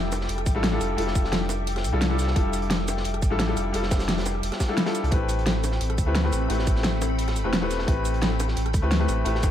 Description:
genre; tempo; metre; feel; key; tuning
liquid drum and bass; 174 BPM; 4/4; straight; A minor; A4 = 440 Hz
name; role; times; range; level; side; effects
clear baby grand piano; accompaniment; 0.0-9.5 s; G3 to B4; -28 LUFS; left 2 dB; vintage 12-bit sampler grit, dub echo
glassy FM pad; sustained chords; 0.0-9.5 s; C4 to D6; -33 LUFS; left 3 dB; ensemble chorus, built-in reverb
warm sub bass; bass; 0.0-9.5 s; E1 to D2; -26 LUFS; equal; none
crunchy breakbeat drum kit; drums; 0.1-9.5 s; hi-hat, snare drum; -36 LUFS; equal; high-pass filter on hats, high-pass filter on snare, high-pass filter on room
pop drum kit; drums; 0.1-9.5 s; hi-hat, rim click, shaker, snare drum; -28 LUFS; equal; overdrive
bongos; percussion; 0.1-9.5 s; none; -36 LUFS; equal; none
electronic kick drum; drums; 0.5-9.5 s; none; -23 LUFS; equal; overdrive
room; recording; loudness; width
light reverb, small room ambience; dark, warm production; -22 LUFS; side -10 dB against mid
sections
0.0-9.5 A section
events
none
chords
0.0 Fmaj13; 5.1 Am9

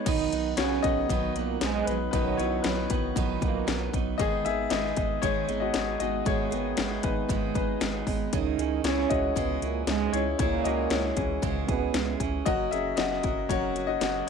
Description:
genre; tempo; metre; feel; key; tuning
piano-driven pop; 116 BPM; 4/4; straight; B major; A4 = 440 Hz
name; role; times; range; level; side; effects
clear concert grand piano; accompaniment; 0.0-14.3 s; D#3 to E5; -30 LUFS; left 11 dB; none
picked steel-string acoustic guitar; riff; 0.0-14.3 s; G#2 to B4; -32 LUFS; right 15 dB; none
dark French horn section; second line; 0.1-3.9, 8.3-12.2 s; F#2 to D#4; -30 LUFS; right 12 dB; none
round analog bass; bass; 0.1-14.2 s; F#1 to C#2; -34 LUFS; right 1 dB; none
house drum kit; drums; 0.1-14.1 s; crash cymbal, hi-hat, kick drum, snare drum; -30 LUFS; left 2 dB; none
room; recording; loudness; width
light reverb, small room ambience; 1960s-style stereo with parts hard left and right; -25 LUFS; side -6 dB against mid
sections
0.1-14.3 A section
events
grand piano solo 0.1-14.3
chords
0.1 B; 4.2 G#m; 8.3 C#m; 12.5 F#

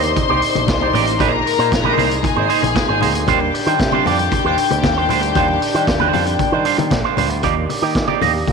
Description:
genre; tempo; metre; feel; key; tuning
disco; 116 BPM; 4/4; straight; Eb major; A4 = 440 Hz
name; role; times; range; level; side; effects
warm studio string section; second line; 0.0-7.4 s; G4 to C6; -20 LUFS; left 10 dB; none
electric guitar with an envelope filter; accompaniment; 0.0-8.5 s; G3 to Eb5; -19 LUFS; right 14 dB; spring reverb
mellow French horn section; sustained chords; 0.0-8.5 s; C3 to G4; -25 LUFS; right 2 dB; none
picked electric bass with an envelope filter; bass; 0.0-8.5 s; Ab1 to Eb3; -22 LUFS; equal; none
vintage drum kit; drums; 0.0-8.5 s; hi-hat, kick drum, snare drum; -22 LUFS; equal; none
congas; percussion; 0.2-8.5 s; none; -26 LUFS; left 11 dB; none
room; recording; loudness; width
moderate echo chamber reverb, RT60 2.0 s; 1960s-style stereo with parts hard left and right; -14 LUFS; side -5 dB against mid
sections
0.0-7.4 A section; 7.4-8.5 B section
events
none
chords
0.0 Cm9; 1.2 Bb9sus4; 3.3 Ebmaj13; 7.4 Ebmaj7

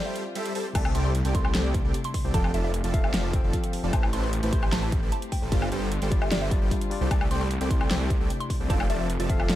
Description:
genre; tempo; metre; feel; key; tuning
future bass; 151 BPM; 4/4; half-time; C major; A4 = 440 Hz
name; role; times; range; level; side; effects
mallet-like synth pluck; melody; 0.0-9.5 s; D5 to C6; -37 LUFS; equal; chorus, phaser, sidechain pumping, tape echo
dark studio string section; sustained chords; 0.0-9.6 s; C3 to A4; -39 LUFS; equal; none
supersaw chords; riff; 0.0-9.6 s; F3 to A5; -33 LUFS; right 1 dB; sidechain pumping
big-room dance drum kit; drums; 0.2-9.6 s; crash cymbal, hi-hat, snare drum, woodblock; -32 LUFS; left 1 dB; none
barky tine electric piano; accompaniment; 0.7-9.6 s; C3 to G5; -34 LUFS; left 5 dB; sidechain pumping
wide detuned saw bass; bass; 0.8-9.6 s; F1 to C2; -28 LUFS; equal; chorus, sidechain pumping
electronic kick drum; drums; 0.8-9.4 s; none; -26 LUFS; equal; none
room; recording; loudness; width
digital ambience; dark, warm production; -23 LUFS; side -14 dB against mid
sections
0.0-9.6 A section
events
break 0.0-0.8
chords
0.0 G7sus4; 0.8 C69; 2.3 F6; 3.9 Am7; 5.5 G7sus4; 7.1 C69; 8.7 F6

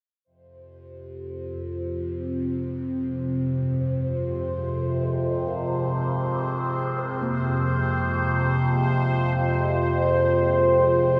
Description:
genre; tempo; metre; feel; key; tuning
dark ambient drone; free time; none; none; F minor; A4 = 440 Hz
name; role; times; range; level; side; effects
deep dark ambient pad; sustained chords; 2.5-11.2 s; F4 to G5; -34 LUFS; equal; chorus, built-in reverb
bubbling stepped-filter texture; texture; 0.6-11.2 s; C5; -34 LUFS; equal; chorus, built-in reverb
overtone-sweeping drone; drone; 1.0-11.2 s; F2 to C3; -26 LUFS; equal; chorus, built-in reverb
gamelan-type bossed gongs; arpeggios; 1.6-11.2 s; F2 to C5; -40 LUFS; equal; none
room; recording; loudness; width
wet huge ambient reverb, RT60 7.1 s; none; -24 LUFS; mono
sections
0.2-11.2 A section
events
fade-in on ambient pad 0.2-11.2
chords
0.2 Fmadd9

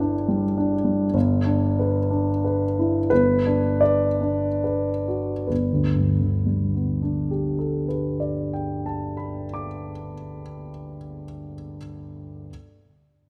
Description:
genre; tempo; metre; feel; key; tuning
classical, impressionist solo piano; 22-36 BPM (dotted quarters); 6/8; rubato; G major; A4 = 440 Hz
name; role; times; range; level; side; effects
warm grand piano; solo; 0.0-12.5 s; G1 to D6; -24 LUFS; equal; none
room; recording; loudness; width
wet concert hall reverb, RT60 2.1 s; none; -23 LUFS; mono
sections
0.0-1.1 A section; 1.1-5.5 B section; 5.5-10.3 C section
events
slowing down 0.0-5.5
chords
0.0 G6; 3.1 Bm/G; 5.5 Gadd9

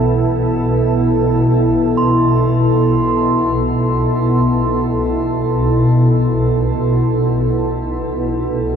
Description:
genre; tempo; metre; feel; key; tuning
dark ambient drone; free time; none; none; unclear; A4 = 440 Hz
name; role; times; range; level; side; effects
deep dark ambient pad; sustained chords; 0.0-8.8 s; B3 to A4; -17 LUFS; equal; chorus, built-in reverb, shimmer reverb
swarming drone; drone; 0.0-8.8 s; B1 to B2; -16 LUFS; equal; built-in reverb
bronze singing bowl; texture; 2.0-8.8 s; C6; -23 LUFS; right 3 dB; shimmer reverb
room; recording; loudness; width
wet huge ambient reverb, RT60 9.3 s; none; -13 LUFS; side -7 dB against mid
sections
0.0-8.8 A section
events
none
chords
0.0 B7sus4

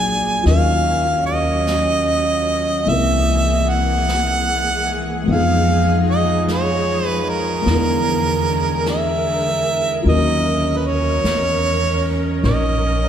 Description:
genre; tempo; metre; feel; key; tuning
jazz ballad; 50 BPM; 4/4; swing 66% on 8ths; Eb minor; A4 = 441 Hz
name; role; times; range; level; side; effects
clear harmonica; melody; 0.0-13.1 s; Bb4 to Ab5; -19 LUFS; right 1 dB; none
dark upright piano; accompaniment; 0.0-13.1 s; Gb3 to Db5; -24 LUFS; left 2 dB; none
warm studio string section; sustained chords; 0.0-13.1 s; D3 to A#4; -25 LUFS; right 1 dB; none
upright bass; bass; 0.0-13.1 s; Bb1 to Bb2; -20 LUFS; equal; none
jazz brush drum kit; drums; 0.5-13.1 s; brushed snare drum, hi-hat, snare drum; -34 LUFS; equal; none
room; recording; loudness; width
wet cathedral reverb, RT60 6.6 s; recorded in a church or concert hall; -15 LUFS; side -9 dB against mid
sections
0.0-13.1 A section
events
none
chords
0.5 Ebm9; 2.9 Caug7; 5.3 Fm7b5; 7.7 E7#11; 10.1 Ebm7

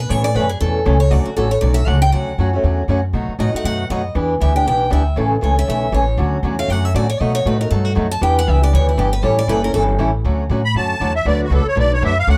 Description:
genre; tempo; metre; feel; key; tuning
acoustic string swing (jazz manouche); 236 BPM; 4/4; swing 57% on 8ths; D major; A4 = 437 Hz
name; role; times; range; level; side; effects
picked steel-string acoustic guitar; second line; 0.0-9.8 s; E4 to A5; -24 LUFS; equal; none
upright bass; bass; 0.0-12.4 s; F#1 to B2; -20 LUFS; equal; none
picked old ladder-braced acoustic guitar; accompaniment; 0.1-12.4 s; B2 to B4; -22 LUFS; equal; none
musette accordion; melody; 10.6-12.4 s; F#4 to B5; -21 LUFS; equal; none
room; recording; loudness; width
light reverb; none; -17 LUFS; mono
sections
0.0-2.1 A section; 2.1-10.2 A section; 10.2-12.4 A section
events
steel-string acoustic guitar solo 0.0-10.2; accordion solo 10.2-12.4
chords
0.1 Aadd9; 1.1 Dmaj7; 3.1 B7; 4.2 Em7; 5.2 A; 6.2 Dmaj7; 7.2 B7; 8.2 Em7; 9.2 A7; 10.2 Dmaj7; 11.3 Bm7

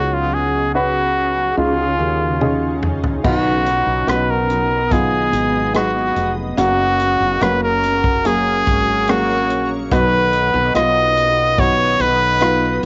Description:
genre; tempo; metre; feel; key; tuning
pop ballad; 72 BPM; 4/4; straight; unclear; A4 = 441 Hz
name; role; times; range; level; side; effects
bright trumpet; melody; 0.0-12.8 s; E#4 to D#5; -19 LUFS; equal; cassette tape
clear upright piano; accompaniment; 0.0-12.9 s; B2 to B4; -24 LUFS; equal; cassette tape
shimmering ambient pad; sustained chords; 0.0-12.9 s; C#3 to D#6; -31 LUFS; equal; chorus, built-in reverb, cassette tape
woody fretless electric bass; bass; 0.0-12.9 s; E#1 to D#2; -26 LUFS; equal; lush chorus
natural country drum kit; drums; 2.4-12.9 s; crash cymbal, hi-hat, kick drum, rim click, toms; -25 LUFS; equal; cassette tape
picked steel-string acoustic guitar; arpeggios; 3.2-12.9 s; B2 to B4; -30 LUFS; equal; cassette tape
room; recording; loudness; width
light reverb; home recording on cassette, nothing above 7.6 kHz; -17 LUFS; mono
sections
0.0-3.2 A section; 3.2-12.9 B section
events
drum fill 2.4-3.2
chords
0.0 C#sus4; 1.6 C#add9; 3.2 B; 6.6 F#; 9.9 B

